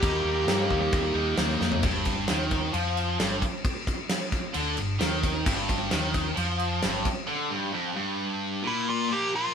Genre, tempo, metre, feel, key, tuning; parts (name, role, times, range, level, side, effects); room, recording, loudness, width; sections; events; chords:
hard rock; 132 BPM; 4/4; straight; G minor; A4 = 440 Hz
nasal lead guitar with a parked wah; melody; 0.0-1.3, 8.7-9.5 s; E4 to G4; -27 LUFS; right 1 dB; overdrive
heavy high-gain guitar; riff; 0.0-9.5 s; F2 to Eb4; -30 LUFS; right 1 dB; distortion
raw garage guitar; riff; 0.0-9.1 s; F2 to Eb4; -31 LUFS; left 2 dB; overdrive, phaser
hollow-body short-scale fingered electric bass; bass; 0.0-7.0 s; G1 to G2; -32 LUFS; equal
big rock drum kit; drums; 0.0-7.2 s; crash cymbal, kick drum, snare drum, toms; -28 LUFS; equal
moderate small room reverb, RT60 0.5 s; band playing live in one room; -24 LUFS; side -7 dB against mid
0.0-1.8 A section; 1.8-9.1 B section
drum fill 1.6; break 7.3-9.1
0.0 Eb; 1.8 Gm